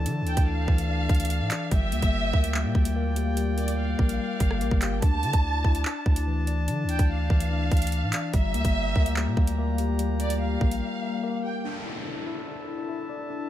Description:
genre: hip hop, drill.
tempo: 145 BPM.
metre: 4/4.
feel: half-time.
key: D minor.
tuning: A4 = 440 Hz.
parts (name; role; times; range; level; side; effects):
warm brass ensemble; sustained chords; 0.0-13.5 s; E3 to Bb5; -37 LUFS; right 1 dB; none.
mellow tine electric piano; arpeggios; 0.0-13.5 s; E3 to D5; -30 LUFS; left 5 dB; analog chorus, low-pass filter, digital delay.
long sustained 808-style bass; bass; 0.0-10.8 s; G1 to D3; -27 LUFS; right 1 dB; none.
downlifter; sound effects; 0.0-1.7, 11.6-13.5 s; none; -40 LUFS; equal; none.
drill drum kit; drums; 0.1-10.8 s; handclaps, hi-hat, kick drum, rim click; -24 LUFS; right 1 dB; none.
warm studio violin section; second line; 0.3-11.6 s; D5 to A5; -32 LUFS; right 2 dB; digital delay.
room: light reverb.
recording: none.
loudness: -23 LUFS.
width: side -12 dB against mid.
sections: 0.0-11.6 A section; 11.6-13.5 B section.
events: break 10.8-11.6.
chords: 0.0 Dmadd9; 1.7 Gm7; 5.0 Dmadd9; 8.3 Gm7; 11.6 Dsus2.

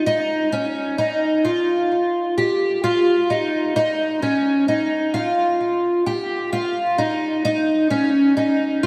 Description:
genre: dream pop.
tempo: 65 BPM.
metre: 4/4.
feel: straight.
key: unclear.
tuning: A4 = 441 Hz.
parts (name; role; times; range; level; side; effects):
fingerpicked twelve-string acoustic guitar; solo; 0.0-8.9 s; Db4 to G4; -20 LUFS; equal; subtle chorus, delay.
room: wet lush hall reverb, RT60 2.9 s.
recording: dreamy mix soaked in reverb.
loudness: -20 LUFS.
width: mono.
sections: 0.0-3.8 A section; 3.8-8.9 B section.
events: none.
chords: none.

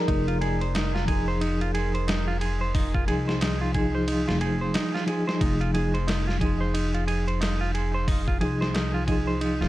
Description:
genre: trip hop.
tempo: 90 BPM.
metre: 4/4.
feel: swing 60% on 16ths.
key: F dorian.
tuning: A4 = 439 Hz.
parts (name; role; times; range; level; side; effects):
santur; melody; 0.0-2.8 s; Bb4 to D5; -35 LUFS; equal; tape echo.
mellow reed electric piano; accompaniment; 0.0-9.7 s; F3 to Ab4; -28 LUFS; equal; fast tremolo, tape echo.
semi-hollow electric guitar; arpeggios; 0.1-9.7 s; Eb4 to C5; -31 LUFS; right 3 dB; dub echo.
upright bass; bass; 0.1-9.7 s; F1 to C2; -28 LUFS; equal; none.
dusty soul sampler-style drum kit; drums; 0.1-9.7 s; hi-hat, kick drum, ride cymbal, snare drum; -29 LUFS; equal; none.
room: light reverb.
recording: echo-heavy mix.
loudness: -23 LUFS.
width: side -16 dB against mid.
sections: 0.0-9.7 A section.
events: filter sweep on reed electric piano 0.0-9.7.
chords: 0.0 Fm7.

